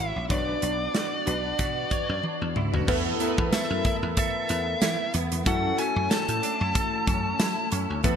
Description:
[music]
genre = 1980s-style pop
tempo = 93 BPM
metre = 4/4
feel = swing 55% on 16ths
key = unclear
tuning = A4 = 445 Hz
[part]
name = fuzz lead guitar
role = melody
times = 0.0-7.7 s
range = D5 to A5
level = -30 LUFS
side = left 1 dB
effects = distortion, ping-pong delay
[part]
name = glassy digital keys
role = accompaniment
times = 0.0-8.2 s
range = A3 to D5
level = -30 LUFS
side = left 1 dB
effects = chorus
[part]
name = direct-recorded clean electric guitar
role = riff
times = 0.0-8.2 s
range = B3 to C#5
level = -34 LUFS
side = right 4 dB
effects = ensemble chorus, ping-pong delay
[part]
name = dry thumbed slap bass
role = bass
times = 0.0-8.2 s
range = G#1 to F#3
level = -30 LUFS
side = equal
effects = none
[part]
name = modern studio drum kit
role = drums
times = 0.3-8.2 s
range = crash cymbal, hi-hat, kick drum, snare drum, tambourine, toms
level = -28 LUFS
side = equal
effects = none
[sound]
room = moderate plate reverb, RT60 2.4 s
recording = bright 1980s-style digital production, lossy compression artefacts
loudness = -23 LUFS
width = side -7 dB against mid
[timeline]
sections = 0.0-2.9 A section; 2.9-8.2 B section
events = drum fill 2.2-2.9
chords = 0.3 Bmadd9; 2.9 Esus4; 5.5 F#m7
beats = | 0.30 0.95 1.59 2.24 | 2.88 3.53 4.17 4.82 | 5.46 6.11 6.75 7.40 | 8.04

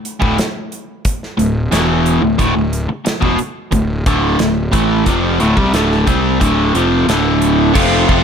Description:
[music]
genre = classic rock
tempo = 90 BPM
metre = 4/4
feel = straight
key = D dorian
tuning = A4 = 438 Hz
[part]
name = big rock drum kit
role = drums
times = 0.1-8.2 s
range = crash cymbal, hi-hat, kick drum, snare drum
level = -19 LUFS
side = equal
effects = none
[part]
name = biting overdriven guitar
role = riff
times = 0.2-8.2 s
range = D2 to F4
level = -14 LUFS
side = equal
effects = none
[part]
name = fuzz picked electric bass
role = bass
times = 0.2-8.2 s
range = D1 to C2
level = -19 LUFS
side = equal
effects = overdrive
[sound]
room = light reverb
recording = none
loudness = -12 LUFS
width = side -7 dB against mid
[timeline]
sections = 0.0-7.8 A section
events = none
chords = 0.0 Dm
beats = 0.39 1.06 1.73 | 2.40 3.07 3.74 4.41 | 5.08 5.75 6.42 7.09 | 7.76

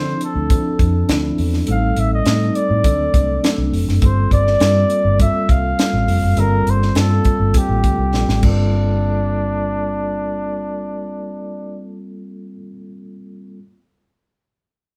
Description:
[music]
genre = polished 1980s jazz-funk pop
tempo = 102 BPM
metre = 4/4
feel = straight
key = G dorian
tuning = A4 = 440 Hz
[part]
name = breathy flugelhorn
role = melody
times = 0.0-11.8 s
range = D4 to F5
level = -24 LUFS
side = equal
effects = none
[part]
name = mellow tine electric piano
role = accompaniment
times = 0.0-13.6 s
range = F3 to A4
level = -25 LUFS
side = equal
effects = none
[part]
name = vintage muted fingered electric bass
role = bass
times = 0.0-12.5 s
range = F1 to D3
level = -21 LUFS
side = equal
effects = none
[part]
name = tight funk drum kit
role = drums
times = 0.2-8.6 s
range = crash cymbal, hi-hat, kick drum, snare drum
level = -20 LUFS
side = equal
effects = none
[sound]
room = moderate stone room reverb, RT60 0.9 s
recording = band playing live in one room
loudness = -17 LUFS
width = mono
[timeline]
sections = 0.0-8.7 A section; 8.7-11.1 B section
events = drum fill 8.1-8.7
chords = 0.0 Dm9; 1.7 Am7b5; 2.9 D7; 4.0 Gm11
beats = 0.50 1.09 | 1.68 2.26 2.85 3.44 | 4.03 4.61 5.20 5.79 | 6.38 6.96 7.55 8.14 | 8.72 9.31 9.90 10.49

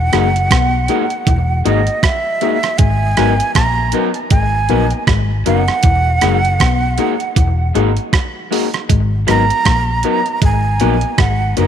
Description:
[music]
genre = lovers rock reggae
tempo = 79 BPM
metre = 4/4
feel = swing 58% on 16ths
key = G# minor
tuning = A4 = 440 Hz
[part]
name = breathy mellow jazz flute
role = melody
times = 0.0-11.7 s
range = D#5 to A#5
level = -18 LUFS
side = right 4 dB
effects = tape echo
[part]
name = vintage muted fingered electric bass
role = bass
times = 0.0-11.7 s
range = E1 to B1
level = -16 LUFS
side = left 1 dB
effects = none
[part]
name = tine electric piano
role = accompaniment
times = 0.1-11.7 s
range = A#3 to A#4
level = -21 LUFS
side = left 12 dB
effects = none
[part]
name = electric guitar through a small old amp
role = riff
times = 0.1-11.7 s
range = E3 to B3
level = -26 LUFS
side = left 11 dB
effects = slapback echo
[part]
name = electric guitar through a small old amp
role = stabs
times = 0.1-11.7 s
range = F#3 to A#4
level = -25 LUFS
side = right 10 dB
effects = none
[part]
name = clean 12-bit digital drum machine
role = drums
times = 0.1-11.7 s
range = hi-hat, kick drum, rim click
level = -16 LUFS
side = right 2 dB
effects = none
[sound]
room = light reverb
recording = 1960s-style stereo with parts hard left and right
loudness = -12 LUFS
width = side -9 dB against mid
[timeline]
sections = 0.0-11.7 A section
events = none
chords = 0.0 Emaj9#11; 2.8 G#m9; 5.8 Emaj9#11; 8.9 G#m9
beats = 0.51 1.27 2.03 | 2.79 3.56 4.32 5.08 | 5.84 6.61 7.37 8.13 | 8.90 9.66 10.42 11.19

